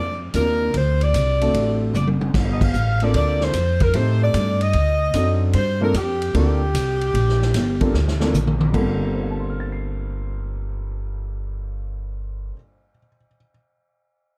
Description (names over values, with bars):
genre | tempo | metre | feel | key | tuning
jazz, big band swing | 150 BPM | 4/4 | swing 67% on 8ths | G minor | A4 = 439 Hz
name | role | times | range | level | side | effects
clear saxophone section | melody | 0.0-8.3 s | G4 to F5 | -26 LUFS | equal | none
upright bass | bass | 0.0-12.5 s | F#1 to A2 | -24 LUFS | equal | none
warm concert grand piano | accompaniment | 0.3-13.5 s | G2 to C7 | -28 LUFS | equal | none
swinging big-band drum kit | drums | 0.3-8.9 s | crash cymbal, hi-hat, kick drum, ride cymbal, snare drum, toms | -28 LUFS | equal | none
room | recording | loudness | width
light reverb | dark, warm production | -20 LUFS | mono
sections
0.0-8.7 A section; 8.7-11.9 B section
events
drum fill 1.9-2.3, 7.9-8.7; band accent 2.5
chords
0.0 Bb; 0.7 D7; 2.3 Gm11; 3.9 Am7b5; 4.7 D7b9; 5.5 Gm11